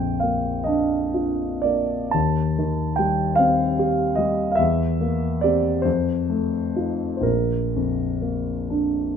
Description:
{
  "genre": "classical, romantic nocturne for solo piano",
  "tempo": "38-50 BPM (dotted quarters)",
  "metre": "6/8",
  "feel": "rubato",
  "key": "Bb major",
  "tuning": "A4 = 441 Hz",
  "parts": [
    { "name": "warm concert grand piano", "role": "solo", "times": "0.0-9.2 s", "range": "Bb1 to A5", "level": "-20 LUFS", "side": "equal", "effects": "none" }
  ],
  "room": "light reverb",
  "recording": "minimal, uncompressed stereo recording",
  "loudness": "-20 LUFS",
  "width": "side -7 dB against mid",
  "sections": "0.0-9.2 A section",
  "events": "none",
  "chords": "0.0 Bb; 2.1 Cm/Eb; 4.6 C7/E; 5.9 F7; 7.3 Bb",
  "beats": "0.67 | 2.15 3.38 | 4.60 5.85 | 7.25 8.71"
}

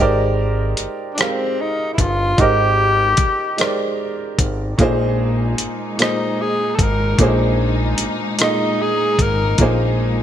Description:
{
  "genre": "slow six-eight R&B",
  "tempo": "50 BPM (dotted quarters)",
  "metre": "6/8",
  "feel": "straight",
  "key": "unclear",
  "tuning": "A4 = 440 Hz",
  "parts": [
    { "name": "warm grand piano", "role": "accompaniment", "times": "0.0-10.2 s", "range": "Bb2 to F5", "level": "-21 LUFS", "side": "right 2 dB", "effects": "none" },
    { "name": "fat analog bass", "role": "bass", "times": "0.0-10.2 s", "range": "G1 to Bb1", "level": "-20 LUFS", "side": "equal", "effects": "none" },
    { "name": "dusty soul sampler-style drum kit", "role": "drums", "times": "0.8-9.8 s", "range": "hi-hat, kick drum, rim click", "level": "-19 LUFS", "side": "equal", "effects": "none" },
    { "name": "breathy tenor saxophone", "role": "melody", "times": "1.1-9.6 s", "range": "C4 to Bb4", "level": "-20 LUFS", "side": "left 1 dB", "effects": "none" },
    { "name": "warm studio string section", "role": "sustained chords", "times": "4.8-10.2 s", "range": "Ab3 to Eb4", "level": "-26 LUFS", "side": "left 3 dB", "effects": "none" }
  ],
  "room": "moderate plate reverb, RT60 2.1 s",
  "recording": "bright 1980s-style digital production",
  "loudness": "-15 LUFS",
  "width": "side -10 dB against mid",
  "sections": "0.0-10.2 A section",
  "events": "none",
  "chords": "0.0 Abmaj9#11; 4.8 Bb9sus4",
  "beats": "1.18 | 2.38 3.58 | 4.78 5.98 | 7.18 8.38 | 9.58"
}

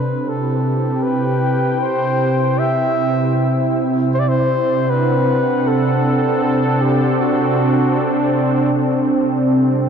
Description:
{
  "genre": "ambient",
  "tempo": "78 BPM",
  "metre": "3/4",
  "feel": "straight",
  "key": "C lydian",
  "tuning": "A4 = 440 Hz",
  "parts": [
    { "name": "mellow flugelhorn", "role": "melody", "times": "0.0-8.4 s", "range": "F#4 to E5", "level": "-20 LUFS", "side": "left 2 dB", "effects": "ping-pong delay" },
    { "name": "warm analog pad", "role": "sustained chords", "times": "0.0-9.9 s", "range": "C3 to G5", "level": "-16 LUFS", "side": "right 1 dB", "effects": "chorus" },
    { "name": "bowed-like drone", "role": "drone", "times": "9.9 s", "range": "none", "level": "barely audible", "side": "none", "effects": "none" }
  ],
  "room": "wet huge ambient reverb, RT60 8.0 s",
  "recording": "dark, warm production",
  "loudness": "-14 LUFS",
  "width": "side -7 dB against mid",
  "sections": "0.0-8.7 A section; 8.7-9.9 A section",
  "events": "filter sweep on analog synth pad 0.0-8.7",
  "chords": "0.0 C; 4.1 D/C; 8.7 C5",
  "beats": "0.27 1.04 | 1.81 2.58 3.35 | 4.12 4.89 5.66 | 6.42 7.19 7.96 | 8.73 9.50"
}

